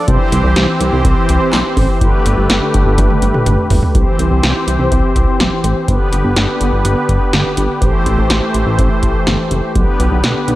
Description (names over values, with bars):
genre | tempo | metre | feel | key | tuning
synth-pop | 124 BPM | 4/4 | straight | G major | A4 = 438 Hz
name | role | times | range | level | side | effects
brassy analog pad | sustained chords | 0.0-10.6 s | D3 to C5 | -16 LUFS | equal | chorus
chorused synth bass | bass | 0.1-10.6 s | F#1 to C2 | -15 LUFS | equal | none
electro analog drum machine | drums | 0.1-10.6 s | handclaps, hi-hat, kick drum, snare drum, toms | -16 LUFS | equal | none
room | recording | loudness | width
light reverb, digital ambience | none | -11 LUFS | side -16 dB against mid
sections
0.0-3.9 A section; 3.9-10.6 B section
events
drum fill 3.0-3.9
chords
0.1 C; 2.0 Gadd9; 3.9 C; 5.9 G; 7.8 Am7; 9.8 G/B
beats
| 0.08 0.56 1.04 1.53 | 2.01 2.50 2.98 3.46 | 3.95 4.43 4.92 5.40 | 5.88 6.37 6.85 7.33 | 7.82 8.30 8.79 9.27 | 9.75 10.24